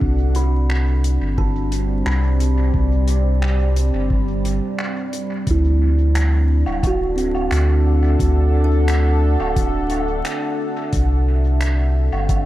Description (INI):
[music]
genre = ambient dub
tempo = 88 BPM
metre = 4/4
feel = straight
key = D mixolydian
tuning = A4 = 439 Hz
[part]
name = deep dark ambient pad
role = sustained chords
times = 0.0-12.5 s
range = G3 to F#5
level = -24 LUFS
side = equal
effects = chorus, built-in reverb
[part]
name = kalimba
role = arpeggios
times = 0.0-11.4 s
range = C4 to B5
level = -27 LUFS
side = right 3 dB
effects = dub echo
[part]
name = warm sub bass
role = bass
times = 0.0-12.5 s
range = D1 to D2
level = -17 LUFS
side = equal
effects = none
[part]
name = electronic kick drum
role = drums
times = 0.0-12.4 s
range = none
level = -22 LUFS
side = equal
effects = overdrive
[part]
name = modern studio drum kit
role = drums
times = 0.3-12.4 s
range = finger snaps, hi-hat, woodblock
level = -30 LUFS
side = equal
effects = dub echo
[sound]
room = small room ambience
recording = vinyl crackle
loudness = -16 LUFS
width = side -15 dB against mid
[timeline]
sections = 0.0-5.5 A section; 5.5-12.5 B section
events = none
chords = 0.0 Cmaj9#11; 5.5 D9; 10.9 Cadd9(#11)